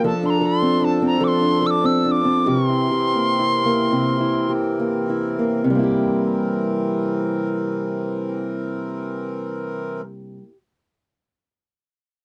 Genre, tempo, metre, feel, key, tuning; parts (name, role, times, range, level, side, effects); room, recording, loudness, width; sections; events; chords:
celtic folk, Celtic slow air; 48-79 BPM; 3/4; rubato; C mixolydian; A4 = 440 Hz
tin whistle; melody; 0.0-4.5 s; A5 to E6; -24 LUFS; equal
fingerpicked acoustic archtop guitar; accompaniment; 0.0-10.6 s; C3 to A4; -23 LUFS; equal
accordion; sustained chords; 0.0-10.0 s; E3 to Bb4; -29 LUFS; equal
light reverb; dry, close 1970s-style studio recording; -21 LUFS; mono
0.0-5.7 A section; 5.7-9.3 B section
slowing down 0.0-5.7
0.0 F6; 2.5 C7